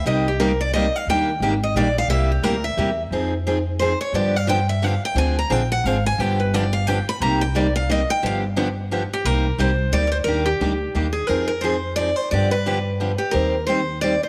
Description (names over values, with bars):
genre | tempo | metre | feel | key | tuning
acoustic string swing (jazz manouche) | 176 BPM | 3/4 | swing 60% on 8ths | C minor | A4 = 440 Hz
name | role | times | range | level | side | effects
picked steel-string acoustic guitar | melody | 0.0-14.3 s | G4 to B5 | -25 LUFS | equal | none
picked steel-string acoustic guitar | accompaniment | 0.1-14.1 s | C3 to C5 | -26 LUFS | equal | none
upright bass | bass | 0.1-14.2 s | G1 to G2 | -26 LUFS | equal | none
room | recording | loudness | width
moderate echo chamber reverb, RT60 2.1 s | none | -21 LUFS | mono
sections
0.0-1.1 A section; 1.1-9.2 A section; 9.2-14.3 B section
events
steel-string acoustic guitar solo 0.0-9.2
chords
0.1 Cm7; 1.1 Ebmaj7; 2.1 C7; 3.1 Fm7; 4.1 G7; 5.2 Dm7b5; 6.2 G7; 7.2 Cm7; 8.2 G7; 9.2 Cm7; 10.3 Ebmaj7; 11.3 Fm7; 12.3 G7; 13.3 Eb6